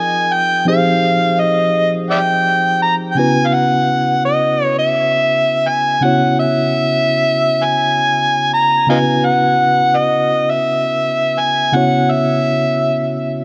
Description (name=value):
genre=R&B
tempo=84 BPM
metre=4/4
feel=straight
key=unclear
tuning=A4 = 439 Hz
part: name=overdriven harmonica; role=melody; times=0.0-13.2 s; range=D5 to Bb5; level=-16 LUFS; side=equal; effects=delay
part: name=mellow tine electric piano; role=accompaniment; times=0.0-13.4 s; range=Db3 to Db5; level=-21 LUFS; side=equal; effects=none
room=moderate lush hall reverb, RT60 2.5 s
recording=none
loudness=-15 LUFS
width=mono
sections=0.0-13.4 A section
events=none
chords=0.0 Fm11; 3.2 Dbm7